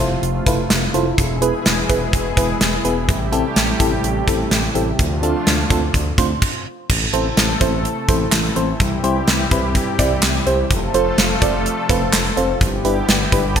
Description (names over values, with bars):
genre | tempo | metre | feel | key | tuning
synth-pop | 126 BPM | 4/4 | straight | A minor | A4 = 442 Hz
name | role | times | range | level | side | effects
FM electric piano with auto-pan | accompaniment | 0.0-13.6 s | B3 to B5 | -21 LUFS | right 1 dB | phaser
brassy analog pad | sustained chords | 0.0-13.6 s | B2 to A4 | -23 LUFS | equal | chorus
smooth gliding synth bass | bass | 0.0-13.6 s | E1 to D2 | -23 LUFS | equal | none
gated 80s drum kit | drums | 0.2-13.6 s | crash cymbal, handclaps, hi-hat, kick drum, snare drum | -18 LUFS | equal | gated reverb
room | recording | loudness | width
moderate lush hall reverb, RT60 2.1 s | bright 1980s-style digital production | -15 LUFS | side -8 dB against mid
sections
0.0-6.9 A section; 6.9-13.6 B section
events
stop 6.4-6.9; FM electric piano fill 13.1-13.6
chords
0.0 Fmaj7; 1.2 E; 3.1 Am7; 5.0 Dm7; 6.9 Am; 8.8 C; 10.7 F; 12.6 G6